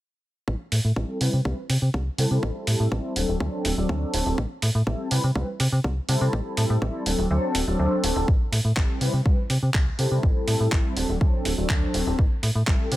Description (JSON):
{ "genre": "filtered disco house", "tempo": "123 BPM", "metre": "4/4", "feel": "straight", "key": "A dorian", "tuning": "A4 = 443 Hz", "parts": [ { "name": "slap-like FM bass", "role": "bass", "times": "0.5-13.0 s", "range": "D1 to C3", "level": "-24 LUFS", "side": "equal", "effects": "sidechain pumping, low-pass filter" }, { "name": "electronic kick drum", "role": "drums", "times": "0.5-12.8 s", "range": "none", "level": "-24 LUFS", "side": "equal", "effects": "high-pass filter on kick, studio reverb" }, { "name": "dusty soul sampler-style drum kit", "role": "drums", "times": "0.7-13.0 s", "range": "handclaps, hi-hat", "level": "-29 LUFS", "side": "right 1 dB", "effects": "sidechain pumping on hats, studio reverb" }, { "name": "mellow synth brass", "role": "accompaniment", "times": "1.0-13.0 s", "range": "F#3 to B4", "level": "-27 LUFS", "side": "equal", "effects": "chorus, phaser, sidechain pumping, low-pass filter" } ], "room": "little or no reverb", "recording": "none", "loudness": "-21 LUFS", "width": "side -15 dB against mid", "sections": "0.5-8.3 A section; 8.3-13.0 B section", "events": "filter sweep 0.5-8.3, 8.3-13.0; kick drops out 7.3-8.3", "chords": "0.5 Am7; 1.2 Cmaj7; 2.4 Am7; 3.2 D7; 4.4 Am7; 5.1 Cmaj7; 6.3 Am7; 7.1 D7; 8.3 Am7; 9.0 Cmaj7; 10.2 Am7; 11.0 D7; 12.2 Am7", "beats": "| 0.48 0.97 1.45 1.94 | 2.43 2.92 3.40 3.89 | 4.38 4.87 5.36 5.84 | 6.33 6.82 7.31 7.79 | 8.28 8.77 9.26 9.75 | 10.23 10.72 11.21 11.70 | 12.19 12.67" }